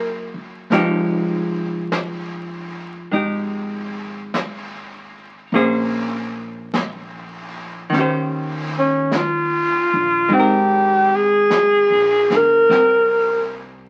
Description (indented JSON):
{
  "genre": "jazz ballad",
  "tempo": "50 BPM",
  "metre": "4/4",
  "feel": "swing 68% on 8ths",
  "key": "Ab major",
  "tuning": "A4 = 435 Hz",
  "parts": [
    { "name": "breathy alto saxophone", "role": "melody", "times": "0.0-0.3, 8.8-13.5 s", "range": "Db4 to Bb4", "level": "-17 LUFS", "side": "equal", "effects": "none" },
    { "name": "archtop guitar, miked and amplified", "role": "accompaniment", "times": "0.0-13.9 s", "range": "Eb3 to C5", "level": "-24 LUFS", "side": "equal", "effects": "none" },
    { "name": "upright bass", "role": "bass", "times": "0.0-13.9 s", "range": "F1 to Eb2", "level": "-32 LUFS", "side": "equal", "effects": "none" },
    { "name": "jazz brush drum kit", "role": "drums", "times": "0.7-13.9 s", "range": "brushed snare drum, hi-hat, snare drum", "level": "-31 LUFS", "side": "equal", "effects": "none" }
  ],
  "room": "moderate studio reverb, RT60 0.6 s",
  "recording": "very old 78 rpm record, vinyl crackle",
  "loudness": "-18 LUFS",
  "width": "mono",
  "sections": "0.0-13.9 A section",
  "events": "none",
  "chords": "0.0 Gb9; 0.7 Fm9; 5.5 Bbm9; 7.9 Eb13; 10.3 Abmaj9"
}